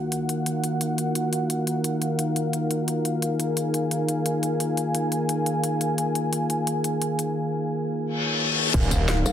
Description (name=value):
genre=dark technical drum and bass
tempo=174 BPM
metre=4/4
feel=straight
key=Eb minor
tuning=A4 = 440 Hz
part: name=dark analog pad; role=sustained chords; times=0.0-9.3 s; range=Eb4 to Ab5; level=-24 LUFS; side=equal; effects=chorus, sidechain pumping
part: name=drum and bass drum kit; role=drums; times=0.1-9.3 s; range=crash cymbal, hi-hat, snare drum, tambourine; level=-29 LUFS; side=left 1 dB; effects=small room ambience
part: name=reverse cymbal and sub drop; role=sound effects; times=8.1-9.3 s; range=none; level=-24 LUFS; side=left 3 dB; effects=none
part: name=snarling distorted saw bass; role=bass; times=8.7-9.2 s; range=Eb1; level=-23 LUFS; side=equal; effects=sidechain pumping
part: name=electronic kick drum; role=drums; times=8.7-9.0 s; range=none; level=-23 LUFS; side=equal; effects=small room ambience
part: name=pulsing pluck wobble bass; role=bass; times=9.3 s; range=Eb1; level=-25 LUFS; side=left 1 dB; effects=chorus
room=light reverb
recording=dense, heavily limited modern master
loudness=-22 LUFS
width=side -9 dB against mid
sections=0.0-8.7 A section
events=reverse cymbal 8.1-8.7; impact 8.7-9.3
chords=0.0 Ebm